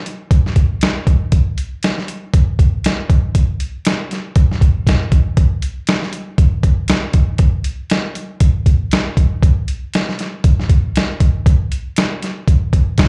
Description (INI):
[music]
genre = blues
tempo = 118 BPM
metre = 4/4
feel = swing 54% on 16ths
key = none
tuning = none
[part]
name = boom bap sampler-style drum kit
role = drums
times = 0.1-13.1 s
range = hi-hat, kick drum, snare drum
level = -16 LUFS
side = equal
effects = none
[sound]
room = light reverb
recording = live gig heard through the venue's PA, club reverb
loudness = -16 LUFS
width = mono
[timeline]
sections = 0.0-13.1 A section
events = none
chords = none